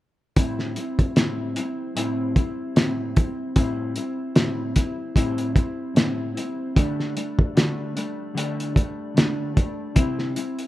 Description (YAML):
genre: indie pop, bedroom pop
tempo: 75 BPM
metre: 4/4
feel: swing 55% on 16ths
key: A minor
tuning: A4 = 440 Hz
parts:
  - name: mellow electric guitar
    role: accompaniment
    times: 0.4-10.7 s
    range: A2 to E4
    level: -26 LUFS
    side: left 1 dB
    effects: analog chorus, warbly pitch drift
  - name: cloth-damped thuddy drum kit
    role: drums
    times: 0.4-10.7 s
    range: hi-hat, kick drum, snare drum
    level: -20 LUFS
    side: equal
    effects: none
room: light reverb, studio reverb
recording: rough home demo mix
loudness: -21 LUFS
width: side -15 dB against mid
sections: 0.4-10.7 A section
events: none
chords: 0.4 Am7; 6.8 Dsus4; 10.0 C